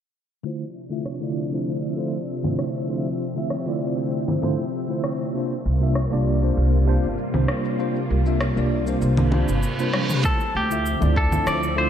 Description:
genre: sunset chillout.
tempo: 98 BPM.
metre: 4/4.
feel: straight.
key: D minor.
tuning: A4 = 439 Hz.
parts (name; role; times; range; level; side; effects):
tine electric piano; accompaniment; 0.4-11.9 s; C3 to E5; -26 LUFS; equal; medium stereo tremolo, auto-pan, low-pass filter, analog delay.
soft string machine; sustained chords; 0.7-11.9 s; C3 to E5; -28 LUFS; equal; ensemble chorus.
deep house drum kit; drums; 0.4-11.7 s; congas, rim click, shaker, toms; -28 LUFS; left 1 dB; studio reverb.
upright bass; bass; 5.7-11.9 s; G1 to D2; -21 LUFS; equal; tube saturation.
reverse cymbal; sound effects; 9.3-10.2 s; none; -31 LUFS; right 3 dB; none.
electronic kick drum; drums; 10.2-11.3 s; none; -24 LUFS; equal; studio reverb.
semi-hollow electric guitar; melody; 10.3-11.9 s; G4 to D5; -23 LUFS; equal; analog delay.
room: moderate plate reverb, RT60 2.4 s.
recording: dreamy mix soaked in reverb, low-pass filter.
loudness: -20 LUFS.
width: side -9 dB against mid.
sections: 0.5-10.2 A section; 10.2-11.9 B section.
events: filter sweep on tine electric piano 0.5-10.2; filter sweep 0.5-10.2; reverse cymbal 9.3-10.2; break 9.6-10.2; drum fill 9.9-10.2.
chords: 0.5 Dm9; 5.3 C7sus4; 10.2 Dm9.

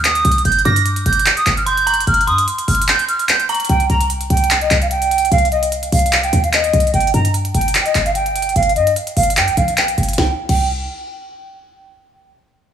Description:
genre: hip hop, trap.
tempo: 148 BPM.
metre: 4/4.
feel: half-time.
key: C minor.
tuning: A4 = 436 Hz.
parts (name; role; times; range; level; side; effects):
reedy concert flute; melody; 0.0-10.7 s; Eb5 to Bb6; -17 LUFS; right 1 dB; low-pass filter, digital delay.
dark detuned synth bell; second line; 0.0-3.7 s; Bb5 to Eb6; -24 LUFS; equal; chorus, digital delay.
short 808-style bass; bass; 0.0-10.9 s; G1 to G2; -18 LUFS; equal; none.
trap drum kit; drums; 0.0-10.6 s; crash cymbal, handclaps, hi-hat, snare drum; -19 LUFS; equal; none.
room: light reverb.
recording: small room ambience.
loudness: -13 LUFS.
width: side -8 dB against mid.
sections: 0.0-3.7 A section; 3.7-10.2 B section; 10.2-11.8 C section.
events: kick muted 2.9-3.7.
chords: 0.5 G5; 3.7 Cm; 6.9 N.C.; 10.2 C5.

